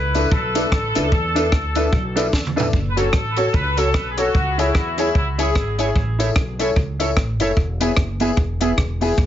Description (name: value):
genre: ska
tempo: 149 BPM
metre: 4/4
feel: swing 59% on 8ths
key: unclear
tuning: A4 = 441 Hz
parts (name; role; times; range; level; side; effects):
- clear horn section; melody; 0.0-5.8 s; E4 to B4; -24 LUFS; left 1 dB; tape echo
- upright bass; bass; 0.0-9.3 s; E1 to E2; -24 LUFS; equal; none
- warm upright piano; stabs; 0.1-9.1 s; B3 to A4; -24 LUFS; left 4 dB; none
- compact cocktail drum kit; drums; 0.1-9.3 s; hi-hat, kick drum, rim click, snare drum, toms; -21 LUFS; equal; none
- mellow electric guitar; accompaniment; 0.2-9.1 s; B3 to C#5; -24 LUFS; right 3 dB; analog chorus, tape echo
- tambourine; percussion; 0.2-9.1 s; none; -36 LUFS; left 7 dB; tape echo
room: moderate small room reverb, RT60 0.5 s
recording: heavily compressed radio sound, multiband compression, nothing above 7.7 kHz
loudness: -17 LUFS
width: side -11 dB against mid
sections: 0.0-2.7 A section; 2.7-9.3 B section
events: drum fill 2.3-2.7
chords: 0.0 E7sus4; 2.7 F#m; 4.3 C#m; 6.0 A; 7.6 E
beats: 0.32 0.72 | 1.12 1.53 1.93 2.33 | 2.73 3.14 3.54 3.94 | 4.34 4.75 5.15 5.55 | 5.96 6.36 6.76 7.16 | 7.57 7.97 8.37 8.78 | 9.18